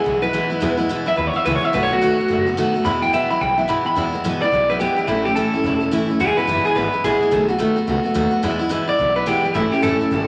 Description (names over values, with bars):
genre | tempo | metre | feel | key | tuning
rockabilly | 215 BPM | 4/4 | swing 62% on 8ths | E major | A4 = 440 Hz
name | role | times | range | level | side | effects
electric guitar through a small old amp | melody | 0.0-10.3 s | E4 to B5 | -21 LUFS | equal | spring reverb
picked steel-string acoustic guitar | accompaniment | 0.0-10.3 s | E2 to F#4 | -23 LUFS | equal | none
upright bass | bass | 0.1-10.3 s | E1 to E2 | -31 LUFS | equal | none
room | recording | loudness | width
moderate large studio reverb, RT60 1.2 s | vinyl crackle | -19 LUFS | mono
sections
0.0-4.0 A section; 4.0-10.3 B section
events
none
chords
0.0 E; 1.7 B7; 2.9 E; 5.1 A; 6.2 E; 7.3 B7; 8.4 E; 9.5 A